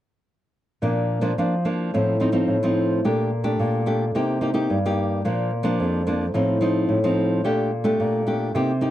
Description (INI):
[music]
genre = samba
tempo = 109 BPM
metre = 4/4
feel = straight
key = Bb major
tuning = A4 = 440 Hz
[part]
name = nylon-string guitar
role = solo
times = 0.8-8.9 s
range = F2 to G4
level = -20 LUFS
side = equal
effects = none
[sound]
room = light reverb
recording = dry, close 1970s-style studio recording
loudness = -20 LUFS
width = side -13 dB against mid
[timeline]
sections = 0.8-5.2 A section; 5.2-8.9 B section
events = none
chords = 0.8 Bb; 1.9 F7/A; 3.0 Gmadd9/Bb; 4.1 Cm7; 5.2 Bb; 6.3 F7/A; 7.4 Gmadd9/Bb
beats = | 0.81 1.36 1.92 2.47 | 3.02 3.58 4.13 4.68 | 5.23 5.79 6.34 6.89 | 7.44 7.99 8.54